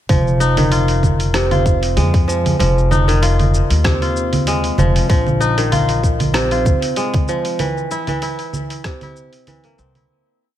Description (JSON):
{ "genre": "organic downtempo", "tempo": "96 BPM", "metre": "4/4", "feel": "swing 55% on 16ths", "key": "F minor", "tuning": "A4 = 435 Hz", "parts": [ { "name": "kora", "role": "arpeggios", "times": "0.1-10.6 s", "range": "C3 to F4", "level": "-18 LUFS", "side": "equal", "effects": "ping-pong delay" }, { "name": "upright bass", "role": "bass", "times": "0.1-10.0 s", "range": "F1 to F2", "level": "-17 LUFS", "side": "equal", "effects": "tube saturation" }, { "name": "dusty soul sampler-style drum kit", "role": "drums", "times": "0.1-10.1 s", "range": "congas, hi-hat, rim click, shaker", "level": "-21 LUFS", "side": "right 2 dB", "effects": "overdrive" }, { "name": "electronic kick drum", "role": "drums", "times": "0.1-9.0 s", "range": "none", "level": "-16 LUFS", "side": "equal", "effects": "none" } ], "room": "light reverb", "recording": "none", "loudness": "-14 LUFS", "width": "side -12 dB against mid", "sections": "0.1-10.1 groove", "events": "fade-out 6.8-10.1", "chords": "0.1 Fm7; 5.1 Bb5; 7.6 C7", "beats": "| 0.10 0.72 1.35 1.97 | 2.60 3.22 3.85 4.47 | 5.10 5.72 6.35 6.97 | 7.60 8.22 8.85 9.47" }